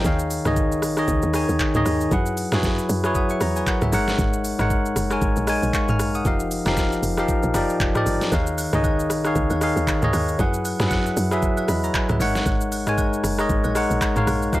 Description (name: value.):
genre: amapiano.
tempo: 116 BPM.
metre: 4/4.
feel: swing 58% on 16ths.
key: unclear.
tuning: A4 = 440 Hz.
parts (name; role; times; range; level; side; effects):
bell-like tine electric piano; accompaniment; 0.0-14.6 s; Eb3 to F6; -22 LUFS; left 1 dB; none.
woody log drum bass; bass; 0.0-14.6 s; F1 to Gb2; -26 LUFS; equal; none.
smooth R&B drum kit; drums; 0.0-14.6 s; handclaps, hi-hat, kick drum, rim click, shaker, snare drum, toms; -24 LUFS; equal; none.
agogo bells and woodblock; percussion; 8.3-14.6 s; none; -35 LUFS; right 3 dB; none.
room: little or no reverb.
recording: dry, gritty hardware recording.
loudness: -19 LUFS.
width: side -16 dB against mid.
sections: 0.0-14.6 A section.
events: none.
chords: 0.0 Eb9sus4; 2.1 Gb9sus4; 3.9 Ab9sus4; 6.3 F9sus4; 8.3 Eb9sus4; 10.4 Gb9sus4; 12.2 Ab9sus4.